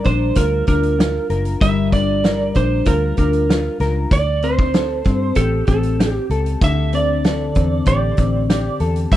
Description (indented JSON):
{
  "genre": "indie pop, bedroom pop",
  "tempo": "96 BPM",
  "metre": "4/4",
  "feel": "straight",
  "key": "unclear",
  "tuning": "A4 = 440 Hz",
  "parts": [
    { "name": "mellow electric guitar", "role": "accompaniment", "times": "0.0-9.2 s", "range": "D3 to Bb4", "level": "-22 LUFS", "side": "left 5 dB", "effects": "analog chorus, vibrato effect" },
    { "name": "loose indie drum kit", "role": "drums", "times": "0.0-9.2 s", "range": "hi-hat, kick drum, snare drum", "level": "-18 LUFS", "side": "equal", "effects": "none" },
    { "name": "electric slide guitar", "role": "melody", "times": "0.1-9.2 s", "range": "A4 to E5", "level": "-22 LUFS", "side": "right 5 dB", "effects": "lush chorus" },
    { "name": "vintage muted fingered electric bass", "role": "bass", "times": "0.1-9.2 s", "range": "F#1 to G2", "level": "-20 LUFS", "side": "equal", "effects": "none" }
  ],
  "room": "little or no reverb",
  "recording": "none",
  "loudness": "-15 LUFS",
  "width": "side -13 dB against mid",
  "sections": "0.0-9.2 A section",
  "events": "none",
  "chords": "0.0 Gm7; 4.1 D7sus4"
}